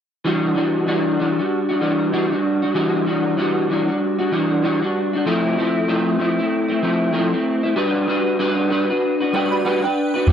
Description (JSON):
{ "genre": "indie pop, bedroom pop", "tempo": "96 BPM", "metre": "4/4", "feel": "swing 60% on 16ths", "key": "E minor", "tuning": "A4 = 440 Hz", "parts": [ { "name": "electric guitar through a small old amp", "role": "accompaniment", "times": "0.2-10.3 s", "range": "E3 to B4", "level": "-17 LUFS", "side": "equal", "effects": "ensemble chorus, vibrato effect" }, { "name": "shimmering bell with halo", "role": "second line", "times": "9.3-10.3 s", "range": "B4 to B5", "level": "-24 LUFS", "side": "right 7 dB", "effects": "ensemble chorus, phaser, analog chorus, tape echo" }, { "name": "vintage muted picked electric bass", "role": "bass", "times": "10.3 s", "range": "E1", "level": "-11 LUFS", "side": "right 1 dB", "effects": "none" } ], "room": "moderate booth ambience, RT60 0.2 s", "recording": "dry, close 1970s-style studio recording", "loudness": "-17 LUFS", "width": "side -8 dB against mid", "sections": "0.2-10.3 A section", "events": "none", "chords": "0.2 Em9; 5.3 Fmaj7; 7.8 Gmaj7" }